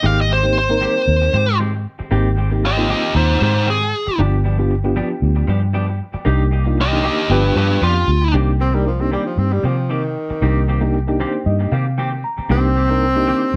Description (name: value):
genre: blues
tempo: 116 BPM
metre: 4/4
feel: swing 55% on 16ths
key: C minor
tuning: A4 = 441 Hz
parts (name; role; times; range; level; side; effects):
- smooth overdriven lead guitar; melody; 0.0-8.3 s; D4 to F5; -20 LUFS; equal; none
- reed electric piano; accompaniment; 0.0-13.6 s; Bb3 to Bb5; -25 LUFS; equal; fast tremolo
- clean electric guitar; stabs; 0.0-13.5 s; Eb3 to G4; -29 LUFS; equal; tape echo
- vintage muted fingered electric bass; bass; 0.0-13.6 s; G1 to C3; -20 LUFS; equal; none
- breathy tenor saxophone; second line; 8.6-13.6 s; Eb3 to C4; -22 LUFS; equal; none
room: light reverb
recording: none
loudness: -17 LUFS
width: mono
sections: 0.0-8.3 A section; 8.3-13.6 A section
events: lead electric guitar solo 0.0-8.3; tenor saxophone solo 8.3-13.6; reed electric piano fill 10.9-12.5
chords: 0.0 Abmaj7; 4.2 G7; 6.3 Cm7; 7.3 G7; 8.3 Cm7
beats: | 0.03 0.55 1.07 1.59 | 2.11 2.63 3.15 3.67 | 4.19 4.71 5.23 5.75 | 6.26 6.78 7.30 7.82 | 8.34 8.86 9.38 9.90 | 10.42 10.94 11.46 11.98 | 12.50 13.02 13.54